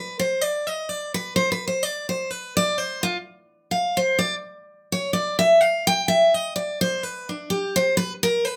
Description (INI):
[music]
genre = bluegrass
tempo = 127 BPM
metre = 3/4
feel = swing 54% on 8ths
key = unclear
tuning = A4 = 445 Hz
[part]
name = picked steel-string acoustic guitar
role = solo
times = 0.0-8.6 s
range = D4 to G5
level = -23 LUFS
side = equal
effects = none
[sound]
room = moderate small room reverb, RT60 0.5 s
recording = none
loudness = -23 LUFS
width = mono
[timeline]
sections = 0.0-8.6 A section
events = steel-string acoustic guitar solo 0.0-8.6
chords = none